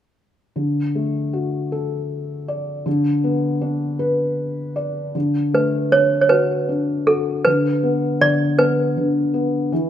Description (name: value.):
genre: children's music, lullaby.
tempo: 52 BPM (dotted quarters).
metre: 6/8.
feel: rubato.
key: D major.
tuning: A4 = 437 Hz.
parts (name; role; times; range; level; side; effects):
felt-muted upright piano; accompaniment; 0.6-9.9 s; D3 to D5; -20 LUFS; left 2 dB; none.
toy piano; melody; 5.5-9.4 s; A4 to D5; -17 LUFS; right 2 dB; none.
room: moderate recital hall reverb, RT60 1.6 s.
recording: minimal, uncompressed stereo recording.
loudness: -17 LUFS.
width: side -10 dB against mid.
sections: 0.6-5.2 A section; 5.2-9.9 B section.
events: none.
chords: 0.6 D; 2.9 Bm/D; 5.2 D; 7.5 Bm/D.